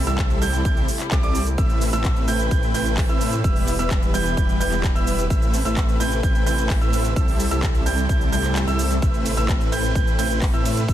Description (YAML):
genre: EDM, festival progressive house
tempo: 129 BPM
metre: 4/4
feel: straight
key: A minor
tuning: A4 = 444 Hz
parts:
  - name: muted studio string section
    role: sustained chords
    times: 0.0-10.9 s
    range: C3 to B4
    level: -31 LUFS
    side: left 2 dB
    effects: sidechain pumping
  - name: wide detuned saw bass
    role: bass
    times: 0.0-10.9 s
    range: E1 to A2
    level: -25 LUFS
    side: equal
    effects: chorus, sidechain pumping
  - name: clear concert grand piano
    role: arpeggios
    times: 0.1-10.9 s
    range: D6 to G6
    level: -28 LUFS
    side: right 5 dB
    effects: sidechain pumping, ping-pong delay
  - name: dense compressed supersaw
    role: riff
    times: 0.1-10.9 s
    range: G3 to G5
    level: -26 LUFS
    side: equal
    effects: cassette tape, sidechain pumping, ping-pong delay
  - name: big-room dance drum kit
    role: drums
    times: 0.1-10.9 s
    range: handclaps, hi-hat, ride cymbal, shaker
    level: -30 LUFS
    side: right 1 dB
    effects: none
  - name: electronic kick drum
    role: drums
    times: 0.2-10.9 s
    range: none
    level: -21 LUFS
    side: equal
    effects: none
room: little or no reverb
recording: dense, heavily limited modern master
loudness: -18 LUFS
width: side -12 dB against mid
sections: 0.0-10.9 A section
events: kick drops out 8.6-9.0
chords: 0.0 C6; 1.6 Amadd9; 3.4 Em; 5.3 Amadd9; 7.2 C6; 9.0 Amadd9